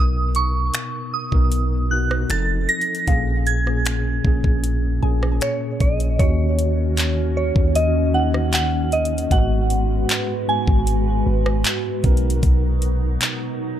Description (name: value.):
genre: contemporary R&B.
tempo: 77 BPM.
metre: 4/4.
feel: straight.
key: Eb minor.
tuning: A4 = 444 Hz.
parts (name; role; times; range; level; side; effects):
soft synth bell; melody; 0.0-11.6 s; Db5 to Bb6; -24 LUFS; right 2 dB; chorus, tape echo.
mellow tine electric piano; accompaniment; 0.0-13.8 s; Ab2 to A#4; -24 LUFS; equal; medium stereo tremolo, tape echo.
warm 808-style bass; bass; 0.0-13.2 s; F1 to Eb2; -21 LUFS; equal; none.
trap drum kit; drums; 0.3-13.4 s; finger snaps, handclaps, hi-hat, kick drum, rim click; -20 LUFS; equal; none.
mallet-like synth pluck; texture; 3.1-6.5 s; F5 to Ab5; -34 LUFS; left 6 dB; chorus, phaser, tape echo.
glassy FM pad; sustained chords; 6.6-13.8 s; Eb3 to Cb5; -28 LUFS; right 2 dB; ensemble chorus, built-in reverb, sidechain pumping.
room: digital ambience.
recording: echo-heavy mix.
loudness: -17 LUFS.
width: side -11 dB against mid.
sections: 0.0-6.2 A section; 6.2-13.8 B section.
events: none.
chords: 0.0 Bmaj7; 2.3 F7; 3.1 Bbm7; 6.2 Ebm7; 9.3 Abm7; 12.0 Bmaj7.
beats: 0.74 1.52 2.30 | 3.08 3.86 4.63 5.41 | 6.19 6.97 7.75 8.53 | 9.31 10.09 10.87 11.65 | 12.43 13.21.